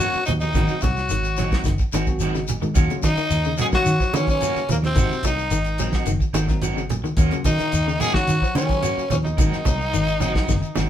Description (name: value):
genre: afrobeat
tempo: 109 BPM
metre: 4/4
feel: straight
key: unclear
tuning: A4 = 441 Hz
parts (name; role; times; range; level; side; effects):
- raspy tenor saxophone; melody; 0.0-10.9 s; Bb3 to Ab4; -24 LUFS; left 1 dB; none
- brilliant trombone; second line; 0.0-10.9 s; Bb3 to Ab4; -36 LUFS; right 1 dB; none
- clear bass trombone; second line; 0.0-10.9 s; Bb2 to Ab3; -35 LUFS; left 4 dB; none
- bell-like tine electric piano; accompaniment; 0.0-10.5 s; Gb3 to Ab5; -34 LUFS; left 1 dB; medium stereo tremolo
- electric guitar at the edge of break-up; arpeggios; 0.0-10.9 s; C3 to Gb3; -30 LUFS; left 7 dB; none
- electric guitar at the edge of break-up; stabs; 0.0-10.9 s; Eb3 to Gb4; -30 LUFS; right 3 dB; tremolo
- damped 70s drum kit; drums; 0.0-10.9 s; hi-hat, kick drum, snare drum; -23 LUFS; equal; none
- congas; percussion; 0.0-10.9 s; none; -28 LUFS; right 4 dB; none
- shekere; percussion; 0.1-10.9 s; none; -31 LUFS; left 4 dB; none
- fingered electric bass; bass; 0.2-10.9 s; Gb1 to Eb3; -24 LUFS; equal; none
room: moderate studio reverb, RT60 0.5 s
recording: band playing live in one room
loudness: -18 LUFS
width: side -10 dB against mid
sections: 0.0-10.9 A section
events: tine electric piano fill 1.7-2.8; drum fill 10.5-10.9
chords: 0.0 Ebm7; 0.5 Ab7; 2.8 Ebm7; 5.0 Ab7; 7.2 Ebm7; 9.4 Ab7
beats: | 0.55 1.10 1.65 2.20 | 2.76 3.31 3.86 4.41 | 4.97 5.52 6.07 6.62 | 7.17 7.73 8.28 8.83 | 9.38 9.93 10.48